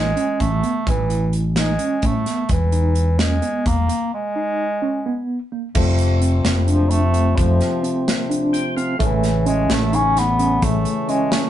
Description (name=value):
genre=progressive instrumental, band music in an uneven meter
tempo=258 BPM (eighths)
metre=7/8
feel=straight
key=unclear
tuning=A4 = 440 Hz
part: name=clear bass clarinet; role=melody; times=0.0-11.5 s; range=E3 to C#4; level=-22 LUFS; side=equal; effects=none
part: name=mellow tine electric piano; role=arpeggios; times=0.0-11.4 s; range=A3 to E4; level=-24 LUFS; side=right 1 dB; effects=medium tremolo
part: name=mellow fretless electric bass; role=bass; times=0.0-10.8 s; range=E1 to A2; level=-19 LUFS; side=equal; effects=none
part: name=modern studio drum kit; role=drums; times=0.2-11.4 s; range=crash cymbal, hi-hat, kick drum, snare drum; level=-23 LUFS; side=equal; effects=none
part: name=percussive tonewheel organ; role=accompaniment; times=5.8-11.5 s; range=C3 to G5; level=-24 LUFS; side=left 2 dB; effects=slow rotary speaker
room=moderate studio reverb, RT60 0.6 s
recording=rough rehearsal-room recording, nothing above 11.0 kHz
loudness=-17 LUFS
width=side -11 dB against mid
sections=0.0-5.7 A section; 5.7-11.5 B section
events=break 4.1-5.7; tonewheel organ fill 8.3-9.0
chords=0.0 A; 2.5 E; 5.7 F; 9.0 A